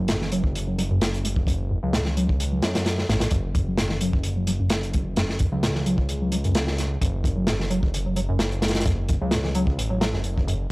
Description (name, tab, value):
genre	breakbeat, breaks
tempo	130 BPM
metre	4/4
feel	swing 53% on 16ths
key	unclear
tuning	A4 = 440 Hz
part	deep acid bass	riff	0.0-10.5 s	F#2 to A3	-27 LUFS	equal	wide subtle chorus, tape echo
part	fat analog bass	bass	0.0-10.7 s	F#1 to F#2	-26 LUFS	equal	none
part	crunchy breakbeat drum kit	drums	0.1-10.6 s	hi-hat, kick drum, snare drum	-24 LUFS	equal	none
room	small room reverb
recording	dry, gritty hardware recording, transformer saturation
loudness	-21 LUFS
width	side -22 dB against mid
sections	0.0-10.7 A section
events	none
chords	0.0 F#m